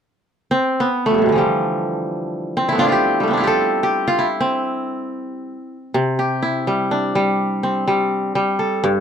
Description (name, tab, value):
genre	west african traditional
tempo	free time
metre	none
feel	none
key	C major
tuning	A4 = 440 Hz
part	kora	arpeggios	0.5-9.0 s	F2 to A4	-17 LUFS	equal	none
room	light reverb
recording	dry, close 1970s-style studio recording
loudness	-17 LUFS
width	side -8 dB against mid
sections	0.2-5.9 A section; 5.9-9.0 B section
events	kora solo 0.2-5.9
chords	0.2 C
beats	free time